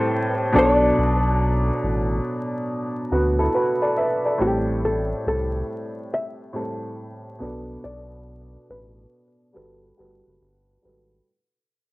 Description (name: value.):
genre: lo-fi hip hop.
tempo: 70 BPM.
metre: 4/4.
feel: swing 65% on 16ths.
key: unclear.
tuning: A4 = 440 Hz.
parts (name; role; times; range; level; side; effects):
archtop guitar, miked and amplified; melody; 0.0-10.8 s; G4 to E5; -24 LUFS; left 1 dB; low-pass filter, cassette tape, analog delay.
bright upright piano; accompaniment; 0.0-11.3 s; A2 to E5; -22 LUFS; equal; cassette tape, low-pass filter.
round analog bass; bass; 0.6-11.2 s; F#1 to D2; -25 LUFS; equal; none.
room: moderate spring reverb, RT60 1.4 s, studio ambience.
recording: home recording on cassette, vinyl crackle.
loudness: -20 LUFS.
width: side -20 dB against mid.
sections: 0.0-11.3 A section.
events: fade-out 0.0-11.3; filter sweep 0.0-11.3.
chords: 0.0 Am7; 0.5 Bm7; 4.4 Am7; 7.4 Bm7; 9.5 Gmaj9.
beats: 0.11 | 0.97 1.83 2.68 3.54 | 4.40 5.25 6.11 6.97 | 7.83 8.68 9.54 10.40.